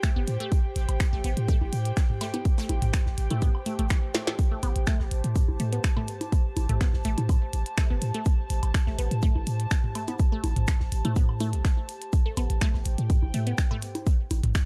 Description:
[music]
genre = minimal techno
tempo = 124 BPM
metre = 4/4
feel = straight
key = A minor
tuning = A4 = 440 Hz
[part]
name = resonant blip pluck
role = riff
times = 0.0-13.8 s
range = E3 to B3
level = -38 LUFS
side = equal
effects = phaser, sidechain pumping, delay
[part]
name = electronic kick drum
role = drums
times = 0.0-14.7 s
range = none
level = -26 LUFS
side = equal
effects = none
[part]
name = minimal click drum kit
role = drums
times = 0.0-14.7 s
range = finger snaps, hi-hat, snare drum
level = -35 LUFS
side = equal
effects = overdrive
[part]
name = modern studio drum kit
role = drums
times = 0.0-14.7 s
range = hi-hat, shaker, snare drum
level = -48 LUFS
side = equal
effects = none
[part]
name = airy breathy pad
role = texture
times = 0.0-14.1 s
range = G4 to A5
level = -40 LUFS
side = equal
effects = chorus, sidechain pumping
[part]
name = punchy sub bass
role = bass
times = 0.2-14.5 s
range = G1 to A2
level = -29 LUFS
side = equal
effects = sidechain pumping
[part]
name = electronic woodblock, bongos and toms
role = percussion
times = 0.9-14.5 s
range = none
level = -35 LUFS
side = equal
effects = delay
[sound]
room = little or no reverb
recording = dark, warm production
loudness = -26 LUFS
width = mono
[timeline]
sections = 0.0-14.7 A section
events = drum fill 4.1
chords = 0.0 Am7

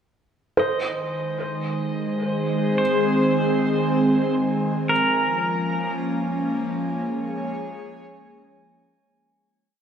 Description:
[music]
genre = ambient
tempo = 55 BPM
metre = 4/4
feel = straight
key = Bb minor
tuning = A4 = 439 Hz
[part]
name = pedal steel guitar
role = melody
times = 0.6-5.9 s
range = Bb4 to Eb5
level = -27 LUFS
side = equal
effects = shimmer reverb, diffuse ambient delay
[part]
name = airy breathy pad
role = sustained chords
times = 0.6-9.3 s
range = Eb3 to Db5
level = -22 LUFS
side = equal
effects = chorus, shimmer reverb
[part]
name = felt-muted upright piano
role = arpeggios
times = 0.6-4.9 s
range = C5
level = -26 LUFS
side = right 2 dB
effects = shimmer reverb, diffuse ambient delay
[part]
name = glass harmonica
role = texture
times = 0.6-9.3 s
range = Ab3 to Ab5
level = -36 LUFS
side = right 2 dB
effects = shimmer reverb
[sound]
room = wet scoring stage reverb, RT60 2.0 s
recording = none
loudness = -20 LUFS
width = side -8 dB against mid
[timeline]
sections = 0.6-9.3 A section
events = fade-in on glass harmonica 0.6-9.3; fade-in on pedal steel guitar 0.6-9.3; fade-out on felt piano 0.6-9.3; fade-out 4.9-9.3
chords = 0.6 Ab; 4.9 Bbm7

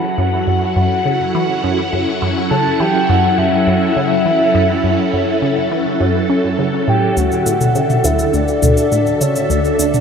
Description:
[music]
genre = ambient, sequencer-driven space music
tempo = 103 BPM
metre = 4/4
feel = straight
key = unclear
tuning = A4 = 440 Hz
[part]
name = soft octave-layered synth lead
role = melody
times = 0.0-10.0 s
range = C#5 to A5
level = -18 LUFS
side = equal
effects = chorus, phaser, tape echo
[part]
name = phased string machine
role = sustained chords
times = 0.0-10.0 s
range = D3 to A5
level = -17 LUFS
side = equal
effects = ensemble chorus, phaser
[part]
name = resonant blip pluck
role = riff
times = 0.2-9.9 s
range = D2 to C#4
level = -18 LUFS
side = equal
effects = phaser, tape echo
[part]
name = electronic cabasa and toms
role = percussion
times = 7.2-10.0 s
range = none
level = -19 LUFS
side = left 2 dB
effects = overdrive
[part]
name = bubbling stepped-filter texture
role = texture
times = 7.2-10.0 s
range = E5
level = -29 LUFS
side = right 4 dB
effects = chorus, built-in reverb
[sound]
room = wet huge ambient reverb, RT60 8.4 s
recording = dreamy mix soaked in reverb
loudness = -13 LUFS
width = side -6 dB against mid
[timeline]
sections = 0.0-7.2 A section; 7.2-10.0 B section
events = none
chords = 0.0 F#m7; 7.2 D

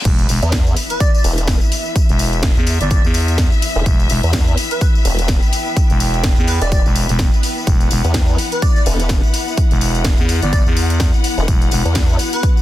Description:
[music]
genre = bass house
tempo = 126 BPM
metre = 4/4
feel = swing 57% on 16ths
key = E minor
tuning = A4 = 439 Hz
[part]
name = reverse cymbal and impact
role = sound effects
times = 0.0-2.0 s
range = none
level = -29 LUFS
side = left 1 dB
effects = none
[part]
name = clear studio string section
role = sustained chords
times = 0.1-12.6 s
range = E3 to F#5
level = -26 LUFS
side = left 4 dB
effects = sidechain pumping
[part]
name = growling FM bass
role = bass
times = 0.1-11.8 s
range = E1 to E2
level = -17 LUFS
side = equal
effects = tube saturation, sidechain pumping
[part]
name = electronic kick drum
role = drums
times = 0.1-12.5 s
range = none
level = -15 LUFS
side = equal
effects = overdrive, high-pass filter on kick
[part]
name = house drum kit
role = drums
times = 0.1-12.5 s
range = crash cymbal, hi-hat, snare drum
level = -24 LUFS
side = equal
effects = none
[part]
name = tambourine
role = percussion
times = 0.1-12.6 s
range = none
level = -28 LUFS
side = left 6 dB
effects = none
[part]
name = warbly tape-like pad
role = texture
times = 0.8-12.6 s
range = B3 to G5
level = -26 LUFS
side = left 2 dB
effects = chorus, built-in reverb, sidechain pumping
[part]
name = formant-sweep wobble bass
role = bass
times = 0.4-12.2 s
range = E1 to E2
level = -17 LUFS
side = equal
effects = chorus, tube saturation, sidechain pumping
[part]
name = airy dreamy lead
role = melody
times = 0.9-12.4 s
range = B4 to D5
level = -25 LUFS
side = equal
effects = chorus, cassette tape, ping-pong delay
[sound]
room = little or no reverb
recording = dense, heavily limited modern master, high-pass filter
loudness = -13 LUFS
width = side -14 dB against mid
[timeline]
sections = 0.1-12.6 A section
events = drop 0.1-12.6; impact 0.1-2.0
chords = 0.1 E5

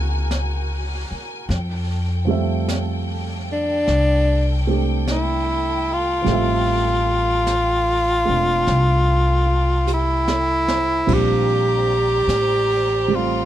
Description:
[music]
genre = jazz ballad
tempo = 50 BPM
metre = 4/4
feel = swing 67% on 8ths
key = F major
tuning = A4 = 441 Hz
[part]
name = warm baby grand piano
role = accompaniment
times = 0.0-13.5 s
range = Fb3 to E5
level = -26 LUFS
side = right 5 dB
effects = none
[part]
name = warm studio string section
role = sustained chords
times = 0.0-13.5 s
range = Gb4 to Bb5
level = -30 LUFS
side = equal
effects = none
[part]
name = upright bass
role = bass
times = 0.0-13.4 s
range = E1 to F2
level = -22 LUFS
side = left 1 dB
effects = none
[part]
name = jazz brush drum kit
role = drums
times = 0.3-13.5 s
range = brushed snare drum, crash cymbal, hi-hat, kick drum, snare drum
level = -31 LUFS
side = equal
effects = none
[part]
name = breathy tenor saxophone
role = melody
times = 3.5-13.5 s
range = D4 to G4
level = -19 LUFS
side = equal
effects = none
[sound]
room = little or no reverb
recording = close, detailed microphones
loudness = -17 LUFS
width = side -12 dB against mid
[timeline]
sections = 0.0-11.1 A section; 11.1-13.5 B section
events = drum fill 9.9-11.1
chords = 0.0 Gb9; 1.5 Fmaj9; 11.1 Bb69

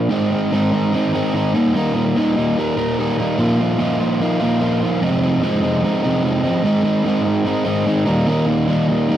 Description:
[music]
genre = rock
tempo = 147 BPM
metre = 4/4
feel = straight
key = Eb major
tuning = A4 = 440 Hz
[part]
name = crunchy overdriven guitar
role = solo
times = 0.0-9.2 s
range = Eb2 to F4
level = -16 LUFS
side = equal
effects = spring reverb
[sound]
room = light reverb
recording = dry, close 1970s-style studio recording, vinyl crackle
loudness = -16 LUFS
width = side -11 dB against mid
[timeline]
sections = 0.1-9.2 A section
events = none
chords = 0.1 Ab; 1.5 Eb; 3.4 Bbsus4; 5.0 Fm7; 6.7 Ab; 8.1 Eb

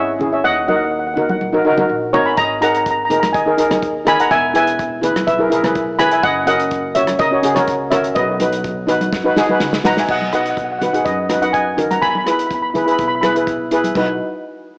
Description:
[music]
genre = calypso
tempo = 124 BPM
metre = 4/4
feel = straight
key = B major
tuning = A4 = 440 Hz
[part]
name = steel pan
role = melody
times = 0.0-13.4 s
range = A#4 to B5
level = -16 LUFS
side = equal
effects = cassette tape
[part]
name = steel pan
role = accompaniment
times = 0.0-14.2 s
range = C#4 to C#5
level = -17 LUFS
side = equal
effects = none
[part]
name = upright bass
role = bass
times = 0.0-14.2 s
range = E1 to F#2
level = -29 LUFS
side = equal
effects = none
[part]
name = congas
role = percussion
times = 0.2-14.2 s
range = none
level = -26 LUFS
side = equal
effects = none
[part]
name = natural country drum kit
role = drums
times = 2.4-14.1 s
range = crash cymbal, hi-hat, kick drum, rim click, snare drum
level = -24 LUFS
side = equal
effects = none
[sound]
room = moderate lush hall reverb, RT60 1.9 s, small room ambience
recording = home recording on cassette, small speaker sound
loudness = -14 LUFS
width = side -37 dB against mid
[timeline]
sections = 0.0-10.1 A section; 10.1-14.0 B section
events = drum fill 9.1-10.1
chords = 0.5 D#m; 2.4 G#sus2; 4.3 E; 6.2 F#6; 8.2 B; 12.0 E; 14.0 B

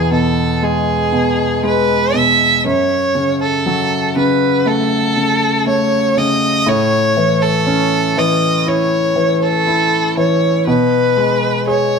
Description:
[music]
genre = pop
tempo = 60 BPM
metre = 4/4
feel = straight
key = unclear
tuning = A4 = 440 Hz
[part]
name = rich violin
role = melody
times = 0.0-12.0 s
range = G#4 to E5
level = -15 LUFS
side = right 1 dB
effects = none
[part]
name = clear concert grand piano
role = accompaniment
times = 0.0-12.0 s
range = E2 to G#4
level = -15 LUFS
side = left 1 dB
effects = none
[sound]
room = wet stone room reverb, RT60 1.1 s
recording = band playing live in one room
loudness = -12 LUFS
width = side -5 dB against mid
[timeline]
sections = 0.0-12.0 A section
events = none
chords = 0.0 E; 2.6 F#m; 6.7 A; 10.7 G#madd11/B

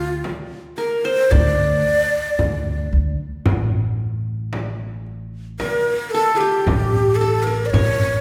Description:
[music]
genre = Arabic maqam ensemble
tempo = 112 BPM (eighths)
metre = 10/8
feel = straight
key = D minor, A maqam hijaz from 3.5 s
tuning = A4 = 441 Hz
[part]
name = breathy ney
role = melody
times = 0.0-8.2 s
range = F4 to D5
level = -22 LUFS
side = equal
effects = none
[part]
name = qanun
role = second line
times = 0.0-8.2 s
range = F4 to D5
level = -26 LUFS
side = equal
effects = none
[part]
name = upright bass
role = bass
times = 0.0-8.2 s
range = A1 to D2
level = -25 LUFS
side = equal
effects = none
[part]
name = darbuka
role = percussion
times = 0.2-8.0 s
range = none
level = -26 LUFS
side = equal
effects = none
[part]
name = frame drum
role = percussion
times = 0.3-8.0 s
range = none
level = -31 LUFS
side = equal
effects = none
[sound]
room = wet recital hall reverb, RT60 1.6 s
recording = recorded in a church or concert hall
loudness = -20 LUFS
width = mono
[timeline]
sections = 0.0-3.5 A section; 3.5-8.2 B section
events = none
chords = none

